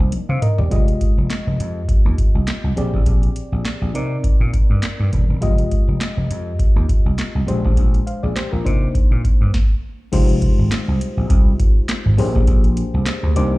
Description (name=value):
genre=early-eighties boogie funk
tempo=102 BPM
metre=4/4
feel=swing 56% on 16ths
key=F dorian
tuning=A4 = 440 Hz
part: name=FM electric piano with auto-pan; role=accompaniment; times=0.0-13.6 s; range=Ab3 to D6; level=-25 LUFS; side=left 2 dB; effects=slapback echo
part: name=vintage slap bass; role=bass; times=0.0-13.6 s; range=Eb1 to C3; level=-19 LUFS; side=equal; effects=none
part: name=booming analog drum machine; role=drums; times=0.1-13.5 s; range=crash cymbal, handclaps, hi-hat, kick drum, snare drum, toms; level=-16 LUFS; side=equal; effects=none
room=digital ambience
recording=live gig heard through the venue's PA, club reverb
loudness=-15 LUFS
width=side -20 dB against mid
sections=0.7-10.1 A section; 10.1-13.6 B section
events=drum fill 0.1-0.7; stop 9.5-10.1; FM electric piano fill 13.1-13.6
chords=0.0 Cm9; 0.7 Fm9; 2.8 Bb13; 3.9 Cm9; 5.4 Fm9; 7.5 Bb13; 8.7 Cm9; 10.1 Fm9; 12.2 Bb13